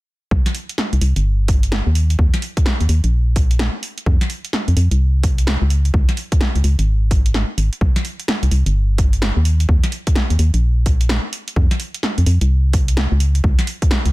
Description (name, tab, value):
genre	UK garage, two-step garage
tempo	128 BPM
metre	4/4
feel	swing 63% on 16ths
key	C minor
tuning	A4 = 441 Hz
part	organ-like FM bass	bass	0.3-14.1 s	G1 to F2	-15 LUFS	equal	none
part	electronic kick drum	drums	0.3-13.9 s	none	-16 LUFS	equal	overdrive
part	punchy analog drum machine	drums	0.5-14.1 s	hi-hat, snare drum	-23 LUFS	equal	none
room	little or no reverb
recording	none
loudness	-15 LUFS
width	side -20 dB against mid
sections	0.3-14.1 A section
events	none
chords	none